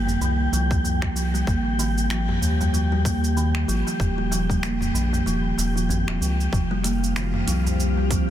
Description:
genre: organic downtempo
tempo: 95 BPM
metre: 4/4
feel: swing 58% on 16ths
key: F minor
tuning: A4 = 440 Hz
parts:
  - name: kalimba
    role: arpeggios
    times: 0.0-8.3 s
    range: Eb3 to C4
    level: -26 LUFS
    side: right 2 dB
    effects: vintage 12-bit sampler grit, tape echo
  - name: round analog bass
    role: bass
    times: 0.0-8.3 s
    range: Eb1 to Eb2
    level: -24 LUFS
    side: equal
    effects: none
  - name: wind-like tuned noise texture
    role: texture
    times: 0.0-8.3 s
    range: F4 to G5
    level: -31 LUFS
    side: left 2 dB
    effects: built-in reverb
  - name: organic electronic drum kit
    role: drums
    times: 0.1-8.3 s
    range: cabasa, finger snaps, hi-hat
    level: -32 LUFS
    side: right 2 dB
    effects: soft clipping on snare
  - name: darbuka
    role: percussion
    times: 0.1-8.3 s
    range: none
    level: -33 LUFS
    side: left 2 dB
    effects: none
  - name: electronic kick drum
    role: drums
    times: 0.7-8.3 s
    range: none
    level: -24 LUFS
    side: equal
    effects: none
  - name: ethereal airy pad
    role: sustained chords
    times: 7.1-8.3 s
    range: F3 to G4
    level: -30 LUFS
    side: left 1 dB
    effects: ensemble chorus, built-in reverb, phaser, sidechain pumping
room: light reverb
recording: dense, heavily limited modern master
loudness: -20 LUFS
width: side -11 dB against mid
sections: 0.0-8.3 A section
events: kick drops out 5.3-6.5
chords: 0.0 Cm7; 1.5 Absus2; 4.0 Ebsus2; 6.5 F5

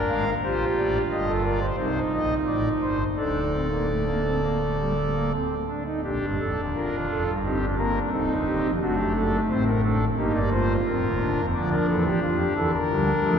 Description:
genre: classical, baroque-style 4-part fugue for pipe organ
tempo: 87 BPM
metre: 4/4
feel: straight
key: G minor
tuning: A4 = 437 Hz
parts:
  - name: pipe organ, foundations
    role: solo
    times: 0.0-13.4 s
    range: C1 to F5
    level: -22 LUFS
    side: equal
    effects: none
room: wet cathedral reverb, RT60 6.3 s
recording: heard from further back in the room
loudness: -22 LUFS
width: side -7 dB against mid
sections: 0.0-6.0 A section; 6.0-13.4 B section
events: none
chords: 0.4 Gm; 1.8 Adim; 3.2 D5; 6.0 Gm; 7.4 Cm/G; 8.8 D7/F#; 10.2 Gm; 11.5 Dm

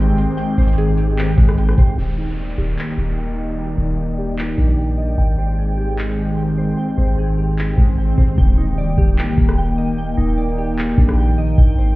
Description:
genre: hip hop, atmospheric cloud-rap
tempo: 150 BPM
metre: 4/4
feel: half-time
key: Eb major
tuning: A4 = 441 Hz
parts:
  - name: warbly tape-like pad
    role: sustained chords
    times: 0.0-12.0 s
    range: Eb3 to G5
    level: -22 LUFS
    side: equal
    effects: chorus, built-in reverb, phaser, low-pass filter
  - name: glassy digital keys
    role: arpeggios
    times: 0.0-12.0 s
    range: Ab3 to G5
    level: -27 LUFS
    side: right 1 dB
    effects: chorus, low-pass filter, tape echo
  - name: warm 808-style bass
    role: bass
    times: 0.0-12.0 s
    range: Eb1 to Bb1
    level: -18 LUFS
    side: equal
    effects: none
  - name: wind-like tuned noise texture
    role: texture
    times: 0.0-8.3 s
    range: G3 to D5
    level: -34 LUFS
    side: left 1 dB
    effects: built-in reverb
  - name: booming analog drum machine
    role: drums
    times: 0.2-11.8 s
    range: handclaps, hi-hat, kick drum, rim click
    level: -16 LUFS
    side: equal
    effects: none
  - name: downlifter, swell and impact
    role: sound effects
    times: 2.0-10.0 s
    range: none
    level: -32 LUFS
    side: left 1 dB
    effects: none
room: little or no reverb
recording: heard muffled through a wall, stone room reverb, EQ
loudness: -15 LUFS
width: side -19 dB against mid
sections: 0.0-2.0 A section; 2.0-8.4 B section; 8.4-12.0 C section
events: filter sweep 2.0-8.4; swell 7.3-8.4; hi-hats muted 8.4-12.0; impact 8.4-10.0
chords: 0.0 Abmaj7; 2.0 Ebmaj7; 5.2 Abmaj7; 8.4 Ebmaj7

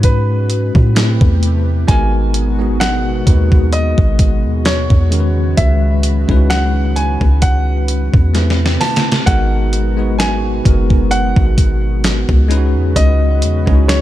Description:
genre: contemporary R&B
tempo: 65 BPM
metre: 4/4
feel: swing 54% on 16ths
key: G# minor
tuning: A4 = 443 Hz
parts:
  - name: warm baby grand piano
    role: melody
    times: 0.0-14.0 s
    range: B4 to A5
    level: -22 LUFS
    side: equal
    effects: ping-pong delay
  - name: bell-like tine electric piano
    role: accompaniment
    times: 0.0-14.0 s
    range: D#3 to B4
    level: -20 LUFS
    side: left 1 dB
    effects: fast stereo tremolo
  - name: chorused pulse-width pad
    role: sustained chords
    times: 0.0-14.0 s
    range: B2 to B4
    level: -25 LUFS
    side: equal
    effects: none
  - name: warm 808-style bass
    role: bass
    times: 0.0-14.0 s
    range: F#1 to A2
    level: -14 LUFS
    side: equal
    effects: none
  - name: crisp 8-bit digital drum machine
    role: drums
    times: 0.0-14.0 s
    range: hi-hat, kick drum, snare drum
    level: -14 LUFS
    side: equal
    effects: none
room: little or no reverb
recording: dark, warm production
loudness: -11 LUFS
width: side -14 dB against mid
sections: 0.0-14.0 A section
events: drum fill 8.3-9.3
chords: 0.0 C#7sus4; 1.0 Am9; 1.9 G#m9; 5.1 C#7sus4; 8.3 Am9; 9.3 G#m9; 12.5 C#7sus4

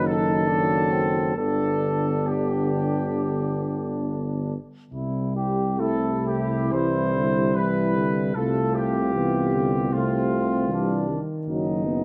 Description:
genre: classical, hymn-like piece for brass band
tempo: 62-80 BPM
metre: 4/4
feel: rubato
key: C major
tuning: A4 = 441 Hz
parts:
  - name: dark trumpet section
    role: melody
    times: 0.0-11.1 s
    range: F4 to C5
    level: -29 LUFS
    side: equal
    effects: none
  - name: mellow flugelhorn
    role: second line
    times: 0.0-12.0 s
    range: C4 to G4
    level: -33 LUFS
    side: equal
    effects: none
  - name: mellow euphonium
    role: accompaniment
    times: 0.0-12.0 s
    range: F#3 to B3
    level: -31 LUFS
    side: equal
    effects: none
  - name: mellow trombone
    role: accompaniment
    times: 0.0-12.0 s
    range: C3 to E3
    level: -32 LUFS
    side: equal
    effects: none
  - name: warm tuba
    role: bass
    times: 0.0-12.0 s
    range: F#1 to C2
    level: -29 LUFS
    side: equal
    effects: none
room: light reverb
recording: close, detailed microphones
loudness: -24 LUFS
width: mono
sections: 0.0-12.0 A section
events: none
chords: 0.0 F#dim7; 1.4 G; 4.9 C; 8.4 Dm7/C; 11.5 F#5

